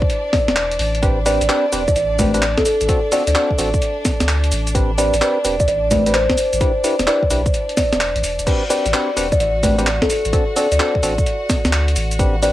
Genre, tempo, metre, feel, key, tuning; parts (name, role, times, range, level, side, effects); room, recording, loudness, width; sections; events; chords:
UK garage, two-step garage; 129 BPM; 4/4; swing 66% on 16ths; A dorian; A4 = 436 Hz
clear studio violin section; sustained chords; 0.0-12.5 s; D4 to F#5; -31 LUFS; left 2 dB; sidechain pumping, cassette tape
electronic kick drum; drums; 0.0-12.3 s; -20 LUFS; equal; cassette tape
breakbeat sampler-style drum kit; drums; 0.1-12.5 s; congas, crash cymbal, handclaps, hi-hat, shaker, snare drum; -21 LUFS; left 1 dB; cassette tape
kalimba; melody; 0.3-12.5 s; A4 to D5; -19 LUFS; equal; cassette tape
saturated sub bass; bass; 0.5-12.5 s; E1 to D2; -21 LUFS; equal
percussive organ stab; stabs; 1.0-12.5 s; C4 to B4; -22 LUFS; equal; chorus, cassette tape, analog delay
light reverb; home recording on cassette; -15 LUFS; side -14 dB against mid
0.0-12.5 A section
0.0 E7(no3); 1.0 Am11; 2.9 D7; 4.7 Am11; 6.6 Em7; 8.5 Am11; 10.3 D7